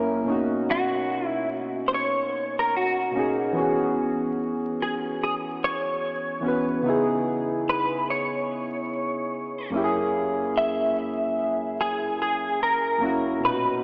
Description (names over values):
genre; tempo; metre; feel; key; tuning
hip hop; 73 BPM; 4/4; swing 58% on 16ths; unclear; A4 = 440 Hz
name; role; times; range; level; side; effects
soft electric-piano-like synth keys; accompaniment; 0.0-13.8 s; F#2 to B4; -28 LUFS; equal; chorus, cassette tape, low-pass filter
clean electric guitar; melody; 0.7-13.8 s; F#4 to E5; -28 LUFS; equal; ensemble chorus, low-pass filter, diffuse ambient delay
room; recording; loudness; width
wet lush hall reverb, RT60 2.9 s; dreamy mix soaked in reverb, vinyl crackle, small speaker sound; -26 LUFS; mono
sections
0.0-13.8 A section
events
none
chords
0.3 Bmaj9; 3.6 E6; 6.9 C#m9; 9.7 F#9